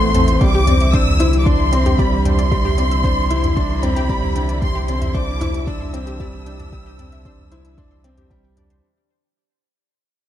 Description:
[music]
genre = piano and strings electronica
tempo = 114 BPM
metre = 4/4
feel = straight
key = unclear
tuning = A4 = 439 Hz
[part]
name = rich studio violin section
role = melody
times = 0.0-8.3 s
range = B5 to E6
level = -24 LUFS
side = equal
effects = ping-pong delay
[part]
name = dark chamber string section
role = sustained chords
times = 0.0-8.8 s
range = C3 to E4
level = -28 LUFS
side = equal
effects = none
[part]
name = analog pluck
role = arpeggios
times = 0.0-8.8 s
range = G4 to C6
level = -29 LUFS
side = left 3 dB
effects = chorus, sidechain pumping, ping-pong delay
[part]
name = clear upright piano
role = riff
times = 0.0-8.9 s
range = G3 to E4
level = -22 LUFS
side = left 1 dB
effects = ping-pong delay
[part]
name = warm sub bass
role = bass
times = 0.0-8.8 s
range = A1 to C2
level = -20 LUFS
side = equal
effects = sidechain pumping
[part]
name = organic electronic drum kit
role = drums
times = 0.1-8.8 s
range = hi-hat, toms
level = -25 LUFS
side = right 1 dB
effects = none
[part]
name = electronic kick drum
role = drums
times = 0.4-8.4 s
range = none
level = -20 LUFS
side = equal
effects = none
[sound]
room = moderate plate reverb, RT60 1.3 s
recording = dreamy mix soaked in reverb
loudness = -15 LUFS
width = side -11 dB against mid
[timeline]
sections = 0.0-8.8 A section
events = drop 0.0-8.8; fade-out 0.4-8.8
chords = 0.4 Cadd9

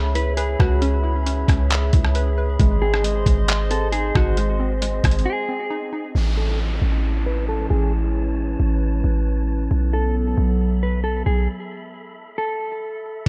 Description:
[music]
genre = hip hop, atmospheric cloud-rap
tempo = 135 BPM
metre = 4/4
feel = half-time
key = unclear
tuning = A4 = 437 Hz
[part]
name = warbly tape-like pad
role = sustained chords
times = 0.0-13.3 s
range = E3 to B#5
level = -30 LUFS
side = equal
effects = chorus, built-in reverb, sidechain pumping, low-pass filter
[part]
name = glassy wavetable pluck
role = arpeggios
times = 0.0-6.2 s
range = G#3 to B4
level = -32 LUFS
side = equal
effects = chorus, delay
[part]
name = warm 808-style bass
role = bass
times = 0.0-13.3 s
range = G#1 to C#2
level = -23 LUFS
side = equal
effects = none
[part]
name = wind-like tuned noise texture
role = texture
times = 0.1-13.3 s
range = G#3 to B5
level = -40 LUFS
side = equal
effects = built-in reverb
[part]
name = mellow electric guitar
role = melody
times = 0.2-13.2 s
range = F#4 to B4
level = -30 LUFS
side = equal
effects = low-pass filter, delay
[part]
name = trip hop sampler-style drum kit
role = drums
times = 0.2-5.3, 13.3 s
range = crash cymbal, handclaps, hi-hat, kick drum, rim click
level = -22 LUFS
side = equal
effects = none
[part]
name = downlifter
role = sound effects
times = 6.2-9.7, 13.3 s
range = none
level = -38 LUFS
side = equal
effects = none
[sound]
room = light reverb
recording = none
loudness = -21 LUFS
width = mono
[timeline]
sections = 0.0-6.2 A section; 6.2-13.3 B section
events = break 5.3-6.2; filter sweep 6.2-13.3; stop 11.5-13.3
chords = 0.0 C#m7; 2.6 G#; 6.2 Amaj7; 9.7 B7sus4

